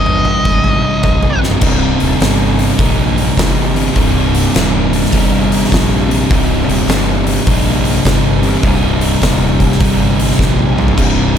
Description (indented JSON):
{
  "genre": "stoner and doom metal",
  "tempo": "103 BPM",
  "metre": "4/4",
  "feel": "swing 66% on 8ths",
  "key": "C minor",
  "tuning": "A4 = 441 Hz",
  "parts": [
    { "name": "fuzz lead guitar", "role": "melody", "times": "0.0-1.4 s", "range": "Eb5", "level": "-17 LUFS", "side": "left 1 dB", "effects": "wah, distortion, tape echo" },
    { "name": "thick fuzz guitar", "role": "riff", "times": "0.0-11.4 s", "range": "C2 to C3", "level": "-17 LUFS", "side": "left 8 dB", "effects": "distortion" },
    { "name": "thick fuzz guitar", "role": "riff", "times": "0.0-11.4 s", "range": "C2 to C3", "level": "-18 LUFS", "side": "right 10 dB", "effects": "distortion" },
    { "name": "fuzz fingered electric bass", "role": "bass", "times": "0.0-11.4 s", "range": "C1 to Bb1", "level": "-17 LUFS", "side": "equal", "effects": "overdrive" },
    { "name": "oversized low-tuned drum kit", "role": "drums", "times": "0.1-11.2 s", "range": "crash cymbal, hi-hat, kick drum, snare drum, toms", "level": "-16 LUFS", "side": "equal", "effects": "none" },
    { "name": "crunchy overdriven guitar", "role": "riff", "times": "1.6-11.4 s", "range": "C2 to Eb4", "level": "-20 LUFS", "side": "equal", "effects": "none" }
  ],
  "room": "small room ambience",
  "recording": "none",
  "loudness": "-10 LUFS",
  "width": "side -8 dB against mid",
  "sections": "0.0-1.6 A section; 1.6-11.0 B section",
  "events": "drum fill 1.3, 10.4-11.0",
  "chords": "0.0 Cm"
}